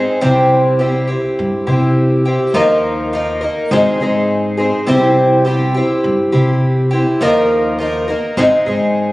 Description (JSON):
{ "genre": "folk rock and heartland rock", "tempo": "103 BPM", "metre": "4/4", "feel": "straight", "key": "unclear", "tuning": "A4 = 439 Hz", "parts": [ { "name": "picked twelve-string acoustic guitar", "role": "accompaniment", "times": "0.0-9.1 s", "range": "Ab2 to Bb4", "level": "-13 LUFS", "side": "equal", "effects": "none" }, { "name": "upright bass", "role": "bass", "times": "0.0-9.1 s", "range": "Ab1 to C3", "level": "-18 LUFS", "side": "equal", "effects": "none" } ], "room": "light reverb", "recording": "recorded on a phone in the room, club reverb", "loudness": "-12 LUFS", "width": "side -18 dB against mid", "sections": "0.0-9.1 A section", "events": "none", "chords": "0.2 C; 2.6 Ebsus2; 3.7 Ab; 4.9 C; 7.2 Ebsus2; 8.4 Ab" }